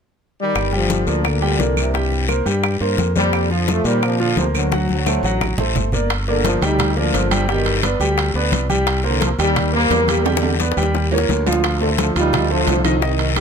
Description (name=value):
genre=latin, salsa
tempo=173 BPM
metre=4/4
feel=straight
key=G minor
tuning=A4 = 441 Hz
part: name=bright trombone section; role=melody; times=0.4-13.4 s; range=G2 to Eb4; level=-21 LUFS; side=left 1 dB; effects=none
part: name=modern bright fingered electric bass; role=bass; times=0.6-13.4 s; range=G1 to Bb2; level=-20 LUFS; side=equal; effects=none
part: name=bongos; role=percussion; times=0.6-13.4 s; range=none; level=-26 LUFS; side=left 12 dB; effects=none
part: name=claves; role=percussion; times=0.6-5.6 s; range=none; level=-28 LUFS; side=right 11 dB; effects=none
part: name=congas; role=percussion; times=0.6-13.4 s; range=none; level=-26 LUFS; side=left 2 dB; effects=none
part: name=guiro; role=percussion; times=0.6-13.4 s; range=none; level=-28 LUFS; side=left 7 dB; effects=none
part: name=clear grand piano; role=accompaniment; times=0.7-13.4 s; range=Eb3 to G5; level=-21 LUFS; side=right 1 dB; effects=none
part: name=timbales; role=percussion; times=6.1-13.4 s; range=none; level=-26 LUFS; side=right 9 dB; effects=none
room=light reverb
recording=close, detailed microphones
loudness=-16 LUFS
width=side -6 dB against mid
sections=0.6-6.1 A section; 6.1-13.4 B section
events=drum fill 4.7-6.1, 10.3-11.6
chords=0.0 N.C.; 0.6 Gm7; 1.9 C5; 3.3 Fsus4; 4.7 D7; 6.1 Gm7; 7.5 G; 8.9 Cm7; 10.3 Em7; 10.9 Eb9; 11.6 Dm7